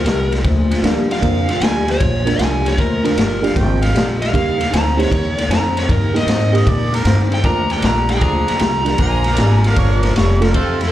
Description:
electric blues shuffle; 154 BPM; 4/4; swing 68% on 8ths; Bb mixolydian; A4 = 442 Hz
dark smooth lead guitar; melody; 0.0-9.6 s; Bb4 to Bb5; -21 LUFS; right 1 dB; overdrive, slapback echo
electric guitar through a small old amp; riff; 0.0-10.9 s; F2 to C4; -21 LUFS; left 3 dB; ensemble chorus, slapback echo
upright bass; bass; 0.0-10.9 s; F1 to Bb2; -18 LUFS; equal
raw garage drum kit; drums; 0.1-10.9 s; kick drum, ride cymbal, snare drum; -19 LUFS; equal
dark upright piano; accompaniment; 0.8-10.5 s; F3 to C5; -21 LUFS; right 4 dB; slapback echo
clear harmonica; second line; 3.5-4.1, 6.6-10.9 s; E4 to Ab5; -24 LUFS; right 3 dB; overdrive, slapback echo
edgy saxophone section; stabs; 7.4-10.9 s; C4 to Bb4; -24 LUFS; right 2 dB; slapback echo
studio reverb; live gig heard through the venue's PA, club reverb; -13 LUFS; side -13 dB against mid
0.0-10.9 A section
0.0 Bb; 4.3 Eb; 7.4 Bb

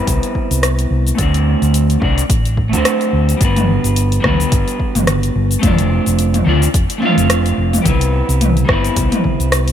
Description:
sunset chillout; 108 BPM; 4/4; swing 56% on 16ths; G major; A4 = 437 Hz
electric guitar through a small old amp; accompaniment; 0.0-9.7 s; G3 to F5; -18 LUFS; moving between left 2 dB and right 4 dB; auto-pan, low-pass filter, ping-pong delay
fingered electric bass; bass; 0.1-9.7 s; F1 to D2; -16 LUFS; equal
deep house drum kit; drums; 0.1-9.7 s; hi-hat, rim click, shaker, toms; -18 LUFS; left 1 dB
electronic kick drum; drums; 0.1-9.4 s; -18 LUFS; equal
light reverb; -12 LUFS; side -10 dB against mid
0.0-9.7 A section
0.0 Cmaj7; 1.2 D7; 3.4 Gmaj7; 5.6 F6; 7.9 Cmaj7

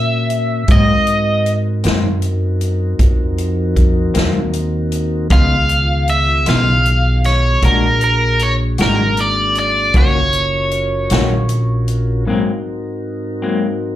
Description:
slow blues; 52 BPM (dotted quarters); 12/8; straight; A4 = 440 Hz
cranked stack guitar; melody; 0.0-12.2 s; Bb4 to F5; -16 LUFS; equal; overdrive, slapback echo
mellow tonewheel organ; sustained chords; 0.0-14.0 s; Ab2 to Bb4; -25 LUFS; left 1 dB; slow rotary speaker
upright bass; bass; 0.0-12.2 s; Gb1 to Bb2; -17 LUFS; equal
swinging big-band drum kit; drums; 0.3-12.1 s; hi-hat, kick drum, snare drum; -17 LUFS; equal
semi-hollow electric guitar; accompaniment; 0.7-13.7 s; Ab2 to F#4; -20 LUFS; left 5 dB; tremolo, slapback echo
light reverb; live gig heard through the venue's PA, club reverb; -13 LUFS; side -13 dB against mid
0.0-14.0 A section
break 12.3-14.0
0.0 Ebm7 (rootless); 0.7 Ab9; 5.3 Db9; 7.6 Bbaug7; 10.0 Ebm7; 12.3 Ab9

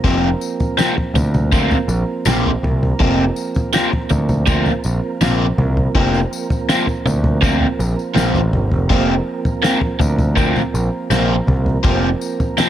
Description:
psychedelic rock; 81 BPM; 4/4; straight; A4 = 440 Hz
mellow tonewheel organ; sustained chords; 0.0-12.7 s; F3 to Bb4; -24 LUFS; right 4 dB; slow rotary speaker
overdriven electric guitar; riff; 0.0-12.7 s; C3 to C4; -19 LUFS; equal; phaser
growling picked electric bass; bass; 0.0-12.1 s; F1 to D2; -18 LUFS; equal; overdrive
cloth-damped thuddy drum kit; drums; 0.0-12.7 s; kick drum, snare drum, toms; -19 LUFS; equal
tambourine; percussion; 0.0-12.7 s; -34 LUFS; left 8 dB
moderate spring reverb, RT60 2.8 s; -14 LUFS; side -11 dB against mid
0.0-12.7 A section
0.0 Fsus4

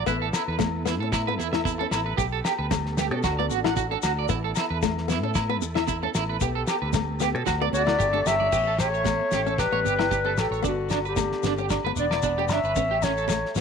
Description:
highlife guitar band; 114 BPM; 4/4; swing 54% on 16ths; A mixolydian; A4 = 440 Hz
electric guitar at the edge of break-up; arpeggios; 0.0-13.6 s; C#4 to G5; -29 LUFS; right 14 dB; tremolo
fingered electric bass; bass; 0.0-13.6 s; E1 to B2; -30 LUFS; equal
flamenco guitar; accompaniment; 0.1-13.6 s; A3 to E4; -31 LUFS; left 14 dB
percussive tonewheel organ; sustained chords; 0.1-8.5 s; B3 to A4; -35 LUFS; right 1 dB; slow rotary speaker, chorus vibrato
damped 70s drum kit; drums; 0.1-13.6 s; crash cymbal, kick drum, snare drum; -30 LUFS; equal
congas; percussion; 0.1-13.6 s; -36 LUFS; right 15 dB
shekere; percussion; 0.1-13.6 s; -34 LUFS; left 7 dB
agogo bells; percussion; 0.3-13.4 s; -34 LUFS; left 18 dB
breathy clarinet; melody; 7.7-13.6 s; F#4 to E5; -25 LUFS; left 1 dB
growling tenor saxophone; second line; 7.8-13.6 s; D3 to C#4; -35 LUFS; left 12 dB
moderate spring reverb, RT60 2.4 s; 1960s-style stereo with parts hard left and right; -22 LUFS; side -6 dB against mid
0.0-8.5 A section; 8.5-13.6 B section
drum fill 8.0-8.5
0.1 Asus2; 2.2 Gadd9/B; 3.2 D; 4.3 Asus2; 6.4 Gadd9/B; 7.5 D; 8.0 Gsus2; 8.5 A7; 10.6 G; 12.8 A

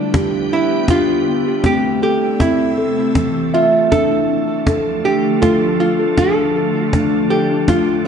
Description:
world meditative, meditative tuned percussion; 80 BPM; 3/4; straight; D dorian; A4 = 440 Hz
archtop guitar, miked and amplified; melody; 0.0-8.1 s; D4 to A4; -19 LUFS; right 3 dB; shimmer reverb, diffuse ambient delay
soft additive organ-like pad; sustained chords; 0.0-8.1 s; C3 to E5; -21 LUFS; right 1 dB; ensemble chorus, built-in reverb, shimmer reverb
steel tongue drum; arpeggios; 0.0-8.1 s; E3 to E5; -17 LUFS; left 1 dB; shimmer reverb
cajon; percussion; 0.1-7.9 s; -20 LUFS; equal
wet echo chamber reverb, RT60 1.5 s, small room ambience; dark, warm production, nothing above 10.9 kHz; -13 LUFS; side -7 dB against mid
0.0-8.1 A section
0.0 G; 1.7 Am; 3.9 Dm

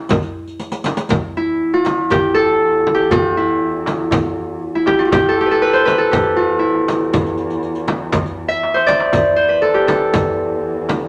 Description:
Arabic maqam ensemble; 119 BPM; 4/4; straight; E maqam bayati; A4 = 440 Hz
Celtic harp; melody; 0.0-11.1 s; E4 to E5; -17 LUFS; equal
darbuka; percussion; 0.1-11.0 s; -30 LUFS; equal
frame drum; percussion; 0.1-11.0 s; -22 LUFS; equal
riq; percussion; 0.1-11.0 s; -30 LUFS; equal
dark cello; drone; 1.1-11.1 s; E2; -30 LUFS; equal
moderate studio reverb, RT60 0.8 s; -16 LUFS; mono
0.0-1.1 A section; 1.1-11.1 B section
drum fill 0.6-1.1, 8.6-9.1

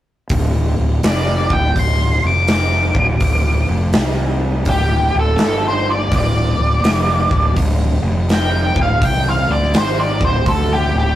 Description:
blues rock power trio and southern rock; 83 BPM; 4/4; swing 65% on 8ths; D minor; A4 = 440 Hz
fuzz fingered electric bass; bass; 0.3-11.2 s; D1 to D2; -17 LUFS; equal; overdrive
huge arena drum kit; drums; 0.3-10.7 s; hi-hat, kick drum, snare drum; -19 LUFS; equal
octave-fuzz lead guitar; melody; 1.1-11.2 s; G4 to D6; -18 LUFS; equal; distortion
light reverb; rough rehearsal-room recording; -14 LUFS; side -13 dB against mid
0.3-11.2 A section
lead electric guitar solo 0.3-11.2
0.3 Dm; 2.1 Dm/F; 2.9 Dm; 3.9 N.C.; 4.7 Dsus4; 5.4 Gsus24; 6.1 Dm; 7.9 Fsus2; 8.7 D7(b5, no3)

